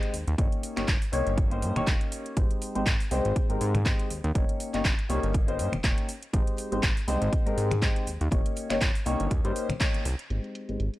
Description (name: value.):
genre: filtered disco house.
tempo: 121 BPM.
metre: 4/4.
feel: swing 56% on 16ths.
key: Ab major.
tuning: A4 = 436 Hz.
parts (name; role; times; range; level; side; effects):
warm baby grand piano; accompaniment; 0.0-10.8 s; Ab3 to Db5; -31 LUFS; left 2 dB; phaser, vintage 12-bit sampler grit, sidechain pumping, low-pass filter.
house drum kit; drums; 0.0-11.0 s; finger snaps, handclaps, hi-hat; -33 LUFS; equal; sidechain pumping on hats, low-pass filter on hats, low-pass filter on snare.
maracas and congas; percussion; 0.0-10.3 s; none; -34 LUFS; left 1 dB; sidechain pumping on perc, low-pass filter on perc.
fat analog bass; bass; 0.1-10.9 s; F1 to Ab2; -29 LUFS; equal; tube saturation, sidechain pumping, low-pass filter.
electronic kick drum; drums; 0.4-9.9 s; none; -26 LUFS; equal; none.
room: studio reverb.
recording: dry, gritty hardware recording.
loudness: -25 LUFS.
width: side -17 dB against mid.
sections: 0.0-10.3 A section.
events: band accent 9.8.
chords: 0.4 Eb7/G; 2.4 Abmaj7; 4.4 Eb7/G; 6.3 Abmaj7; 8.3 Eb7/G; 10.3 Abmaj7.